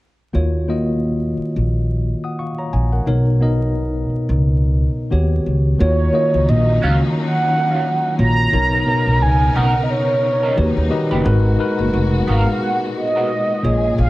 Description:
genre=R&B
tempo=88 BPM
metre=4/4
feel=swing 57% on 16ths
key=Eb minor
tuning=A4 = 440 Hz
part: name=tine electric piano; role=accompaniment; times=0.3-14.1 s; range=Bb2 to Eb6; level=-20 LUFS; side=left 1 dB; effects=medium stereo tremolo
part: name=upright bass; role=bass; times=0.3-14.1 s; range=F1 to Eb2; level=-17 LUFS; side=equal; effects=none
part: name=mellow horn-like synth lead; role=melody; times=5.8-14.1 s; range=Db5 to Bb5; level=-19 LUFS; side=right 2 dB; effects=chorus, slapback echo
part: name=warm studio string section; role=sustained chords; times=5.8-14.1 s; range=Bb2 to A#4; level=-26 LUFS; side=left 1 dB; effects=none
part: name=electric guitar through a small old amp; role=second line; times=6.8-13.3 s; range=Gb3 to B4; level=-27 LUFS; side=right 3 dB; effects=wah, lush chorus
room=light reverb, studio ambience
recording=vinyl crackle, lossy compression artefacts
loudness=-15 LUFS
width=side -18 dB against mid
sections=0.3-5.8 A section; 5.8-14.1 B section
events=none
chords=0.3 Ebm9; 3.1 Bmaj9; 5.1 Eb7alt; 5.8 Ebm9; 8.5 Bmaj9; 10.6 Eb7alt; 11.2 Abm9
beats=| 0.34 1.02 1.70 2.38 | 3.06 3.75 4.43 5.11 | 5.79 6.47 7.15 7.83 | 8.52 9.20 9.88 10.56 | 11.24 11.93 12.61 13.29 | 13.97

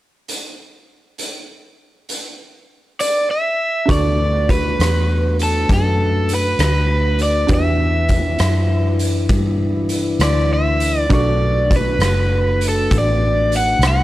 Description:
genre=slow blues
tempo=66 BPM (dotted quarters)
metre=12/8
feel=straight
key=B minor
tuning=A4 = 440 Hz
part: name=raw garage drum kit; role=drums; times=0.3-14.0 s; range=hi-hat, kick drum, rim click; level=-22 LUFS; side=equal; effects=none
part: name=overdriven electric guitar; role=melody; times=3.0-14.0 s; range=A4 to F#5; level=-19 LUFS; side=right 1 dB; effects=none
part: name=clear upright piano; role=accompaniment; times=3.9-14.0 s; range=D4 to C#6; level=-27 LUFS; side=right 3 dB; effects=none
part: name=mellow tonewheel organ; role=sustained chords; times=3.9-14.0 s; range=E3 to B4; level=-24 LUFS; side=left 2 dB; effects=slow rotary speaker
part: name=vintage muted fingered electric bass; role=bass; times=3.9-14.0 s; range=F#1 to G2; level=-18 LUFS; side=equal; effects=none
room=small room ambience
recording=none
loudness=-14 LUFS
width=side -16 dB against mid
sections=0.3-3.9 A section; 3.9-14.0 B section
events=none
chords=0.3 N.C.; 3.9 Bm7; 7.5 Em7; 11.1 Bm7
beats=| 0.27 1.17 2.08 2.98 | 3.88 4.78 5.68 6.59 | 7.49 8.39 9.30 10.20 | 11.10 12.01 12.91 13.81

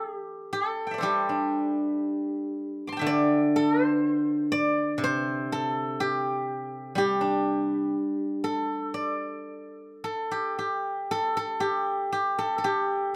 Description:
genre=chinese traditional, Chinese solo plucked strings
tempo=60 BPM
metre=4/4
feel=rubato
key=D shang mode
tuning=A4 = 445 Hz
part: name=steel-string zither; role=solo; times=0.0-13.2 s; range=C3 to D6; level=-28 LUFS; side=equal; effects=none
room=light reverb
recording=none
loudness=-27 LUFS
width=mono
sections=0.0-11.1 A section; 11.1-13.2 B section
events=none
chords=none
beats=0.04 1.04 2.04 | 3.02 4.01 5.00 5.98 | 6.96 7.94 8.95 10.03 | 11.10 12.12 13.15

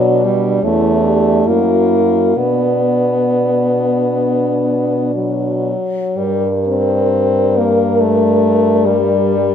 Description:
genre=classical, lyrical piece for horn quartet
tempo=57-77 BPM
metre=4/4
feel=rubato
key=B minor, G minor from 6.2 s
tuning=A4 = 440 Hz
part: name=mellow French horn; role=melody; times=0.0-9.5 s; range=D4 to D5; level=-22 LUFS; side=left 8 dB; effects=none
part: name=warm French horn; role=second line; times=0.0-9.5 s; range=C#4 to Bb4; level=-18 LUFS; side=right 3 dB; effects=none
part: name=warm French horn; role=accompaniment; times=0.0-9.5 s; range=F#3 to C4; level=-15 LUFS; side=left 2 dB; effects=none
part: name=clear French horn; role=bass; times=0.0-9.5 s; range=E2 to B2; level=-20 LUFS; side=right 2 dB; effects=none
room=moderate recital hall reverb, RT60 1.5 s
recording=minimal, uncompressed stereo recording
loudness=-12 LUFS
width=side -8 dB against mid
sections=0.0-6.2 A section; 6.2-9.5 B section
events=none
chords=0.0 Bm; 0.6 C#dim/E; 1.5 F#7; 2.4 Bm; 6.2 Gm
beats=0.63 1.47 | 2.37 3.30 4.24 5.16 | 6.17 7.14 7.99 8.85

